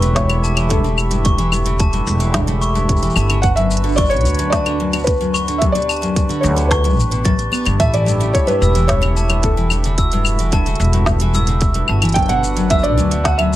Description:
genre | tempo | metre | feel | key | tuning
folktronica | 110 BPM | 4/4 | straight | A mixolydian | A4 = 440 Hz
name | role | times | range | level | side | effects
felt-muted upright piano | melody | 0.0-13.6 s | A4 to G5 | -20 LUFS | equal | ping-pong delay
glockenspiel with brass mallets | second line | 0.0-13.5 s | A5 to A6 | -25 LUFS | left 2 dB | tape echo
hand-pumped harmonium | sustained chords | 0.0-13.6 s | A3 to E5 | -25 LUFS | right 2 dB | none
picked steel-string acoustic guitar | arpeggios | 0.0-13.6 s | F#2 to B3 | -22 LUFS | left 1 dB | ping-pong delay
upright bass | bass | 0.0-13.6 s | E1 to D2 | -18 LUFS | equal | none
organic electronic drum kit | drums | 0.0-13.6 s | claves, hi-hat, shaker, snare drum | -23 LUFS | left 2 dB | none
electronic kick drum | drums | 0.2-13.4 s | none | -18 LUFS | equal | none
room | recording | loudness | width
light reverb | lossy compression artefacts | -14 LUFS | side -14 dB against mid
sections
0.0-13.6 A section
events
none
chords
0.0 A7; 3.4 Gmaj7; 7.8 A7; 12.2 Gmaj7

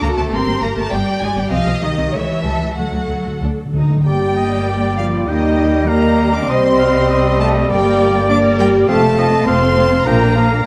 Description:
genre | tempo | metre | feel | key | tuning
quick classical-period movement for symphony orchestra | 100 BPM | 2/4 | rubato | G minor | A4 = 438 Hz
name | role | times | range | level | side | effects
rich chamber violin section | melody | 0.0-10.7 s | D5 to C6 | -30 LUFS | equal | none
rich chamber violin section | second line | 0.0-10.6 s | D4 to D6 | -25 LUFS | equal | none
warm symphonic viola section | accompaniment | 0.0-10.6 s | F#3 to Bb4 | -24 LUFS | equal | none
warm chamber cello section | bass | 0.0-10.6 s | Eb3 to D4 | -24 LUFS | equal | none
warm studio double bass section | bass | 0.0-10.6 s | F1 to Eb2 | -23 LUFS | equal | none
timpani | percussion | 2.8-4.0 s | D3 | -21 LUFS | equal | none
bright silver concert flute | second line | 4.1-10.4 s | D5 to F5 | -29 LUFS | equal | none
clear oboe | second line | 4.1-10.6 s | D5 to G5 | -26 LUFS | equal | none
mellow clarinet | second line | 4.1-10.5 s | Bb3 to D4 | -27 LUFS | equal | none
warm bassoon | accompaniment | 4.1-10.5 s | F3 to G3 | -25 LUFS | equal | none
dark French horn section | sustained chords | 4.1-10.6 s | Eb4 to D5 | -20 LUFS | equal | none
room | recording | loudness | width
moderate concert hall reverb, RT60 2.0 s | none | -15 LUFS | mono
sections
0.0-4.1 A section; 4.1-10.7 B section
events
timpani fill 2.8-4.1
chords
0.3 Gm; 0.9 G5; 1.5 Cm; 2.1 A7; 2.8 D; 4.1 Gm; 5.3 Eb; 6.5 Cm; 7.7 Gm; 8.9 F; 10.1 Bb

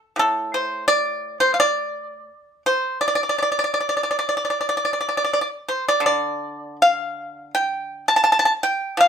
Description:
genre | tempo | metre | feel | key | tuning
chinese traditional, Chinese solo plucked strings | 76-86 BPM | 4/4 | rubato | D yu mode | A4 = 440 Hz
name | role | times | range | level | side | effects
pipa | solo | 0.2-9.1 s | A2 to A5 | -18 LUFS | equal | none
room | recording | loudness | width
moderate studio reverb, RT60 0.6 s | band playing live in one room | -19 LUFS | side -8 dB against mid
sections
0.0-6.0 A section; 6.0-9.1 B section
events
none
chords
none

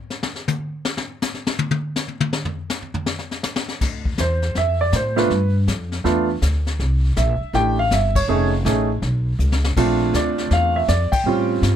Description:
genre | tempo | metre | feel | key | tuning
jazz piano trio | 161 BPM | 4/4 | swing 65% on 8ths | D minor | A4 = 441 Hz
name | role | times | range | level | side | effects
vintage brush drum kit | drums | 0.1-11.8 s | brushed snare drum, crash cymbal, hi-hat, kick drum, snare drum, toms | -24 LUFS | left 3 dB | none
upright bass | bass | 3.8-11.8 s | F1 to A2 | -20 LUFS | equal | none
clear concert grand piano | melody | 4.2-11.8 s | G3 to G5 | -19 LUFS | right 2 dB | none
room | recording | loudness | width
little or no reverb | close, detailed microphones | -18 LUFS | side -10 dB against mid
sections
0.0-3.8 A section; 3.8-11.8 B section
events
drum solo 0.0-3.8; band accent 8.1, 11.1; drum fill 9.4-9.8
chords
0.0 N.C.; 3.8 Dm9; 5.3 G7; 6.8 C6; 8.3 F7alt; 9.8 Bbmaj9; 11.3 A7alt

